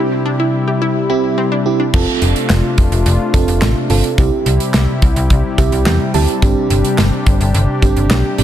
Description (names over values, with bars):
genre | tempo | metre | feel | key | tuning
synth-pop | 107 BPM | 4/4 | straight | C major | A4 = 439 Hz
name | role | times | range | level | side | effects
FM electric piano with soft pad layer | accompaniment | 0.0-8.4 s | C4 to A5 | -19 LUFS | right 6 dB | chorus, tremolo
warm analog pad | sustained chords | 0.0-8.4 s | C3 to G4 | -18 LUFS | left 2 dB | chorus
wide unison pluck | arpeggios | 0.0-1.9 s | C4 to G4 | -21 LUFS | left 2 dB | tape echo
slap-like FM bass | bass | 1.9-8.4 s | F1 to E2 | -15 LUFS | equal | none
modern studio drum kit | drums | 1.9-8.4 s | crash cymbal, handclaps, hi-hat, kick drum, snare drum | -16 LUFS | equal | none
room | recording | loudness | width
light reverb | dense, heavily limited modern master | -12 LUFS | side -11 dB against mid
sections
0.0-1.9 A section; 1.9-8.4 A section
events
break 0.0-1.9; FM electric piano fill 5.3-6.4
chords
0.0 C; 1.9 F6; 4.2 C; 6.4 Gsus4